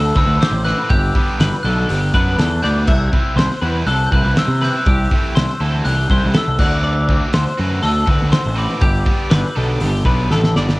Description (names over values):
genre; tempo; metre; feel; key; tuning
math rock and midwest emo; 121 BPM; 4/4; straight; G major; A4 = 440 Hz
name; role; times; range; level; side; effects
glockenspiel with hard plastic mallets; melody; 0.0-10.3 s; D6 to G6; -23 LUFS; equal; cassette tape
twelve-string electric guitar; arpeggios; 0.0-10.8 s; G4 to E5; -23 LUFS; left 2 dB; ensemble chorus, cassette tape, analog delay
fuzz picked electric bass; bass; 0.0-10.8 s; G1 to C3; -18 LUFS; equal; overdrive
cranked stack guitar; riff; 0.2-10.8 s; C3 to F#4; -26 LUFS; right 1 dB; overdrive, cassette tape
loose indie drum kit; drums; 0.2-10.8 s; crash cymbal, hi-hat, kick drum, snare drum; -18 LUFS; equal; cassette tape
room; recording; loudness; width
studio reverb; home recording on cassette; -14 LUFS; side -22 dB against mid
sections
0.0-10.8 A section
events
drum fill 10.3-10.8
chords
0.0 D7; 0.9 Gmaj7; 2.9 Cmaj7; 4.9 Am7/C; 6.6 D7; 8.8 G